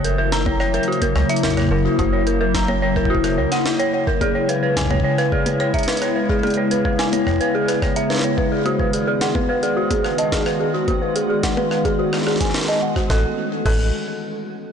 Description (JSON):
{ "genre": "IDM", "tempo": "108 BPM", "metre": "4/4", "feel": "straight", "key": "unclear", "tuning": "A4 = 440 Hz", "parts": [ { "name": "glassy FM pad", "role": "sustained chords", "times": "0.0-13.4 s", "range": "C#3 to A4", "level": "-22 LUFS", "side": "left 2 dB", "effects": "ensemble chorus, built-in reverb" }, { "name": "dark detuned synth bell", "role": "arpeggios", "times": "0.0-13.9 s", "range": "F#4 to A#5", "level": "-21 LUFS", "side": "right 1 dB", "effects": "chorus, tremolo, low-pass filter, ping-pong delay" }, { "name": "metallic FM bass", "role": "bass", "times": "0.0-3.5, 13.1-13.9 s", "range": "E1 to C#2", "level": "-22 LUFS", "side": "equal", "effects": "none" }, { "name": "jungle sampler-style drum kit", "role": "drums", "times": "0.0-13.8 s", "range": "crash cymbal, hi-hat, rim click, snare drum, toms", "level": "-27 LUFS", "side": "left 1 dB", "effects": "ping-pong delay" }, { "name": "electronic kick drum", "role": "drums", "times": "0.5-13.8 s", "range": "none", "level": "-24 LUFS", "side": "equal", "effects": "none" } ], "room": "moderate lush hall reverb, RT60 2.6 s", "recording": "blown-out, overdriven recording, overdrive, nothing above 10.7 kHz", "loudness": "-17 LUFS", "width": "side -7 dB against mid", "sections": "0.0-13.1 A section; 13.1-14.7 B section", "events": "filter sweep on synth bell 0.0-13.1", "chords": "0.0 F#7; 4.2 C#m7; 8.7 G#m7; 13.1 A" }